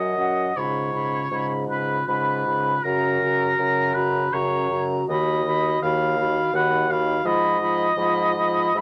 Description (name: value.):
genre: classical, slow romantic movement for wind quintet.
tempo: 81 BPM.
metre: 3/4.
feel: uneven beats, rubato.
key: F# major.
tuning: A4 = 441 Hz.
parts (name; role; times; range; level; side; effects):
silver concert flute; melody; 0.0-8.8 s; F#5 to B5; -29 LUFS; equal; none.
warm oboe; second line; 0.0-8.8 s; A#4 to Cb6; -26 LUFS; equal; none.
mellow French horn; accompaniment; 0.0-8.8 s; C#3 to F#3; -33 LUFS; equal; none.
warm clarinet; accompaniment; 0.0-8.8 s; C#4 to F#4; -31 LUFS; equal; none.
warm bassoon; bass; 0.0-8.8 s; D#2 to G#2; -30 LUFS; equal; none.
room: moderate studio reverb, RT60 0.5 s.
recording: none.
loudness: -22 LUFS.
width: mono.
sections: 0.0-8.8 A section.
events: none.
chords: 0.0 F#5; 0.6 C#7/G#; 2.8 F#; 5.1 B/D#; 7.2 Fm7b5/Ab.